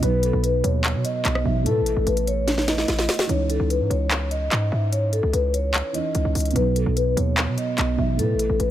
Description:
hip hop, trap; 147 BPM; 4/4; half-time; C# minor; A4 = 441 Hz
vibraphone with soft mallets; melody; 0.0-8.7 s; A4 to E5; -25 LUFS; left 2 dB; low-pass filter
soft octave-layered synth lead; second line; 0.0-2.0 s; A4 to B4; -33 LUFS; left 2 dB; chorus, phaser, ping-pong delay
felt-muted upright piano; accompaniment; 0.0-8.7 s; B2 to B4; -26 LUFS; right 3 dB; low-pass filter
hard-hitting 808-style bass; bass; 0.0-8.7 s; A1 to B2; -23 LUFS; equal
trap drum kit; drums; 0.0-8.7 s; handclaps, hi-hat, rim click, snare drum; -26 LUFS; equal
small room ambience; -20 LUFS; side -12 dB against mid
0.0-3.3 A section; 3.3-8.7 B section
drum fill 2.5-3.3
0.0 B; 1.7 Asus2; 3.3 C#madd9; 6.6 B; 8.2 Asus2

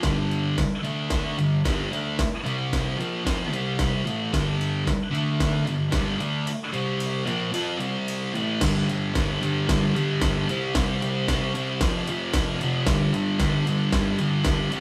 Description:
garage rock duo or trio; 112 BPM; 4/4; straight; G minor; A4 = 440 Hz
thick fuzz guitar; riff; 0.0-14.8 s; F2 to F4; -26 LUFS; equal; distortion
jungle sampler-style drum kit; drums; 0.0-14.8 s; crash cymbal, kick drum, ride cymbal, snare drum; -30 LUFS; equal
wet studio reverb, RT60 0.7 s; rough rehearsal-room recording; -25 LUFS; mono
0.0-8.6 A section; 8.6-14.8 B section
break 6.5-8.6
0.0 G5; 0.8 D5; 1.4 G5; 2.5 C5; 3.0 Bbsus2; 3.5 C5; 4.1 G5; 5.1 D5; 5.7 G5; 6.7 C5; 7.3 Bbsus2; 7.8 C5; 8.3 A5; 8.6 G5; 10.5 C5; 11.8 F5; 12.9 G5

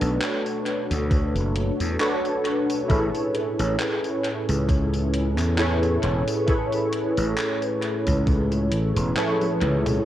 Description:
vaporwave; 67 BPM; 4/4; swing 55% on 16ths; A major; A4 = 440 Hz
warbly lo-fi synth keys; accompaniment; 0.0-10.1 s; D4 to C#5; -24 LUFS; equal; ensemble chorus, analog delay
warbly tape-like pad; sustained chords; 0.0-10.0 s; A2 to D4; -31 LUFS; left 1 dB; chorus, built-in reverb
gritty slap bass; bass; 0.0-10.0 s; E1 to E2; -24 LUFS; equal; overdrive, tube saturation
gated 80s digital drum machine; drums; 0.0-10.0 s; handclaps, hi-hat, tambourine, toms; -31 LUFS; equal; gated reverb, overdrive, analog delay
electronic kick drum; drums; 1.1-8.5 s; -23 LUFS; equal; overdrive
little or no reverb; echo-heavy mix, cassette tape; -21 LUFS; side -12 dB against mid
0.0-10.1 A section
drum fill 9.2-10.1
0.0 Bm7; 2.9 Amaj7

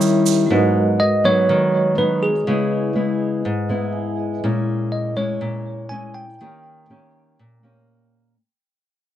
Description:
bossa nova; 122 BPM; 4/4; straight; G# minor; A4 = 440 Hz
nylon-string guitar; accompaniment; 0.0-8.4 s; G#2 to G4; -19 LUFS; left 1 dB
vibraphone with soft mallets; accompaniment; 0.0-4.5 s; G#3 to G#5; -24 LUFS; right 4 dB
tube shaker; percussion; 0.0-0.5 s; -26 LUFS; right 10 dB
bell-like tine electric piano; melody; 1.0-6.8 s; G#4 to G#5; -21 LUFS; right 1 dB; tape echo
moderate booth ambience, RT60 0.2 s; dry, close 1970s-style studio recording; -17 LUFS; side -11 dB against mid
0.5-8.4 A section
fade-out 0.5-8.4; vibraphone fill 3.5-4.4
0.0 D#7b9; 0.5 G#m7; 2.5 C#m7; 4.4 A#m7b5; 6.4 D#7

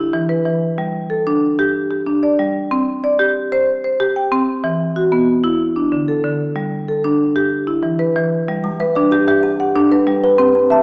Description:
southern african traditional, mbira-style interlocking cycle; 125 BPM (dotted quarters); 12/8; straight; G major; A4 = 442 Hz
marimba with medium hard mallets; arpeggios; 0.0-10.8 s; D3 to G5; -18 LUFS; equal
kalimba; arpeggios; 8.6-10.8 s; G3 to A5; -18 LUFS; equal
wet recital hall reverb, RT60 1.4 s; recorded in a church or concert hall, small speaker sound; -17 LUFS; mono
0.0-8.5 A section; 8.5-10.8 B section
0.0 E5; 0.8 G5; 2.7 C5; 4.6 E5; 5.6 D5; 6.6 G5; 7.5 E5; 8.5 G

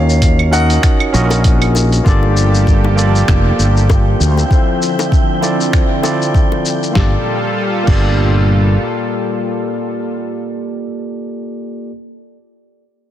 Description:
sunset chillout; 98 BPM; 4/4; swing 57% on 16ths; G minor; A4 = 441 Hz
clear grand piano; melody; 0.0-1.7 s; F5 to Gb5; -22 LUFS; left 4 dB; ping-pong delay
overdriven tine electric piano; accompaniment; 0.0-11.9 s; Bb3 to Eb5; -19 LUFS; moving between left 4 dB and right 5 dB; auto-pan, digital delay
fretless electric bass; bass; 0.0-8.8 s; F1 to Eb2; -12 LUFS; equal; wide subtle chorus
dusty soul sampler-style drum kit; drums; 0.1-8.1 s; claves, crash cymbal, finger snaps, hi-hat, shaker, snare drum; -22 LUFS; left 1 dB; soft clipping on snare
electronic kick drum; drums; 0.2-8.1 s; -13 LUFS; equal
bongos; percussion; 1.3-6.6 s; -26 LUFS; left 5 dB
lush unison pad; sustained chords; 2.1-10.2 s; Bb2 to E5; -20 LUFS; equal; chorus
wind-like tuned noise texture; texture; 2.9-7.0 s; G5; -27 LUFS; right 2 dB; built-in reverb
light reverb; dense, heavily limited modern master; -11 LUFS; side -11 dB against mid
0.0-2.1 A section; 2.1-7.0 B section; 7.0-9.4 C section
filter sweep on analog synth pad 2.1-7.0
0.0 Ebm9; 2.1 Gm9; 4.2 Dm9; 7.0 Gm9

